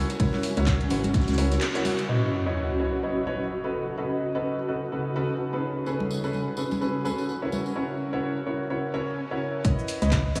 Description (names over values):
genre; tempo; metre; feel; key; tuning
piano house; 127 BPM; 4/4; swing 58% on 16ths; C# minor; A4 = 442 Hz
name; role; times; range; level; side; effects
warm grand piano; riff; 0.0-10.4 s; C#3 to D#5; -31 LUFS; equal; subtle chorus, sidechain pumping, analog delay
organ-like FM bass; bass; 0.0-1.6, 9.6-10.4 s; G#1 to C#2; -28 LUFS; equal; sidechain pumping
granular cloud pad; texture; 0.0-7.8 s; C#3 to G#5; -33 LUFS; equal; built-in reverb, ensemble chorus, sidechain pumping
garage drum kit; drums; 0.1-2.1, 9.6-10.4 s; handclaps, hi-hat, shaker; -37 LUFS; equal; low-pass filter on hats, low-pass filter on snare, low-pass filter on perc, low-pass filter on room
tambourine and congas; percussion; 0.1-2.1, 5.9-7.7 s; none; -37 LUFS; equal; none
electronic kick drum; drums; 0.2-1.3, 9.6-10.2 s; none; -27 LUFS; equal; overdrive
modern studio drum kit; drums; 0.2-2.1, 9.6-10.4 s; hi-hat, shaker, snare drum; -47 LUFS; equal; none
sub drop and swell; sound effects; 2.1-4.0, 8.9-9.6 s; none; -35 LUFS; equal; none
room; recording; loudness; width
wet cathedral reverb, RT60 5.7 s; dreamy mix soaked in reverb, small room reverb; -27 LUFS; mono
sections
0.0-2.1 A section; 2.1-9.6 B section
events
break 1.6-2.1; band accent 1.6; impact 2.1-4.0; swell 8.9-9.6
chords
0.0 F#7; 2.1 C#m9; 3.7 B7/C#; 5.6 Amaj9/C#; 7.5 F#7/C#; 9.6 C#m9